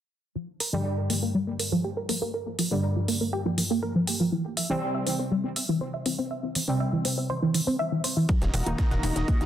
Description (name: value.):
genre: melodic techno.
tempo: 121 BPM.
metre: 4/4.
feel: straight.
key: unclear.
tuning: A4 = 442 Hz.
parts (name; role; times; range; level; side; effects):
tight sequenced synth; arpeggios; 0.4-9.5 s; E3 to Gb5; -27 LUFS; equal; chorus, phaser, sidechain pumping, digital delay.
electronic hi-hat; drums; 0.6-9.5 s; none; -31 LUFS; right 1 dB; sidechain pumping on hats.
synth brass stab; stabs; 0.7-9.5 s; G2 to Eb4; -30 LUFS; equal; chorus, sidechain pumping, digital delay.
lush unison pad; sustained chords; 8.5-9.5 s; Gb4 to Bb5; -36 LUFS; right 2 dB; chorus, sidechain pumping.
dusty soul sampler-style drum kit; drums; 8.3-9.5 s; ride cymbal, snare drum; -41 LUFS; right 2 dB; sidechain pumping on cymbals, high-pass filter on cymbals, high-pass filter on snare.
electronic kick drum; drums; 8.3-9.4 s; none; -24 LUFS; equal; none.
gritty driven synth bass; bass; 8.4-9.5 s; Eb1; -28 LUFS; equal; sidechain pumping.
room: moderate digital room reverb, RT60 1.2 s.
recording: dense, heavily limited modern master.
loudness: -24 LUFS.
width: side -10 dB against mid.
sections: 0.4-9.5 A section.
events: filter sweep on synth arpeggio sound 0.4-9.5; filter sweep on synth stab 0.4-9.5.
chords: 0.4 Gm7; 4.3 C; 8.3 Ebm.